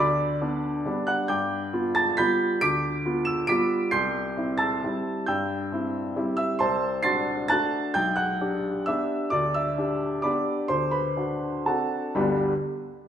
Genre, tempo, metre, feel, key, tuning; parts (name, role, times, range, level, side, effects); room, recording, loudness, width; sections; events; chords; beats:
classical, piano waltz; 115-143 BPM; 3/4; rubato; G major; A4 = 441 Hz
warm upright piano; solo; 0.0-12.5 s; G1 to E7; -23 LUFS; equal
wet recital hall reverb, RT60 1.6 s; minimal, uncompressed stereo recording; -23 LUFS; side -9 dB against mid
0.0-12.2 A section
slowing down 8.6-12.2
0.0 G; 1.3 G7; 3.9 C; 6.6 D7/C; 8.0 G/B; 9.3 G/D; 10.7 D7; 12.2 G
0.41 0.87 | 1.30 1.73 2.17 | 2.61 3.05 3.50 | 3.93 4.37 4.83 | 5.28 5.72 6.17 | 6.61 7.05 7.51 | 7.96 8.40 8.87 | 9.32 9.77 10.24 | 10.70 11.16 11.66 | 12.17